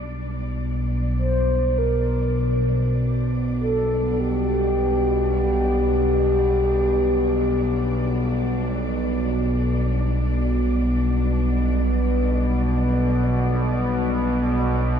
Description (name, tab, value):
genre	dark ambient drone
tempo	free time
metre	none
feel	none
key	unclear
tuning	A4 = 440 Hz
part	rich studio cello section	sustained chords	0.0-15.0 s	G3 to D5	-33 LUFS	left 1 dB	none
part	analog drone	drone	0.0-15.0 s	B1 to B2	-21 LUFS	equal	chorus
part	mellow horn-like synth lead	melody	1.2-8.4 s	G4 to C5	-24 LUFS	left 1 dB	chorus, diffuse ambient delay
room	wet cathedral reverb, RT60 5.7 s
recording	dark, warm production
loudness	-19 LUFS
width	side -8 dB against mid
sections	0.0-15.0 A section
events	fade-in on cello section 0.0-15.0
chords	0.0 G5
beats	free time